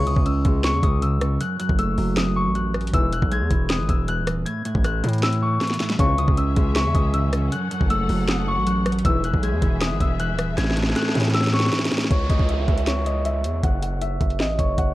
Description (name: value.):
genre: hip hop, trap.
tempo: 157 BPM.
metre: 4/4.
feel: half-time.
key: C# minor.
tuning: A4 = 440 Hz.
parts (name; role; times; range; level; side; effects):
concert harp; melody; 0.0-14.9 s; C#5 to G#6; -27 LUFS; left 2 dB; low-pass filter, digital delay.
mellow electric guitar; accompaniment; 0.0-12.1 s; E2 to C#4; -25 LUFS; right 1 dB; none.
mellow brass ensemble; stabs; 0.0-0.1, 2.9-3.2, 6.0-6.3, 9.0-9.3 s; G#1 to E3; -30 LUFS; left 4 dB; none.
distorted 808-style bass; bass; 0.0-14.9 s; D#1 to A2; -24 LUFS; equal; distortion.
trap drum kit; drums; 0.1-14.9 s; hi-hat, kick drum, rim click, snare drum; -23 LUFS; equal; none.
warm symphonic string section; sustained chords; 6.0-12.1 s; E3 to F#5; -33 LUFS; equal; none.
downlifter; sound effects; 12.1-14.9 s; none; -34 LUFS; equal; none.
room: little or no reverb.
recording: worn, warbling old tape, cassette tape, warbly pitch drift.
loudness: -19 LUFS.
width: side -16 dB against mid.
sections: 0.0-12.1 A section; 12.1-14.9 B section.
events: drum fill 5.6-6.0, 10.6-12.1.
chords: 0.0 C#m; 1.4 F#m; 2.9 E; 4.5 A; 6.0 C#m; 7.5 F#m; 9.0 E; 10.6 A; 12.1 C#m; 13.6 F#m.